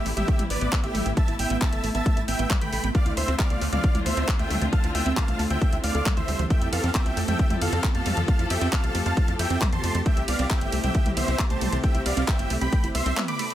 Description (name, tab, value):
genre	uplifting trance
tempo	135 BPM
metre	4/4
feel	straight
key	unclear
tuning	A4 = 440 Hz
part	big supersaw lead	melody	0.0-13.5 s	G4 to D6	-29 LUFS	right 1 dB	sidechain pumping, dub echo
part	warm studio string section	sustained chords	0.0-13.5 s	C3 to A4	-33 LUFS	left 2 dB	sidechain pumping
part	wide unison pluck	arpeggios	0.1-13.5 s	E3 to A4	-32 LUFS	right 4 dB	sidechain pumping, digital delay
part	tight sequencer bass	bass	0.1-13.1 s	G1 to F2	-28 LUFS	equal	sidechain pumping
part	house drum kit	drums	0.1-13.5 s	handclaps, hi-hat, ride cymbal, toms	-31 LUFS	left 1 dB	none
part	electronic kick drum	drums	0.3-12.8 s	none	-23 LUFS	equal	none
room	little or no reverb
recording	none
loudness	-21 LUFS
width	side -12 dB against mid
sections	0.0-13.5 A section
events	break 13.2-13.5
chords	0.0 Asus2; 2.9 Dm7; 6.5 Fadd9; 10.1 C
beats	0.28 0.72 | 1.17 1.61 2.06 2.50 | 2.95 3.39 3.84 4.28 | 4.72 5.17 5.61 6.06 | 6.50 6.95 7.39 7.84 | 8.28 8.72 9.17 9.61 | 10.06 10.50 10.95 11.39 | 11.84 12.28 12.72 13.17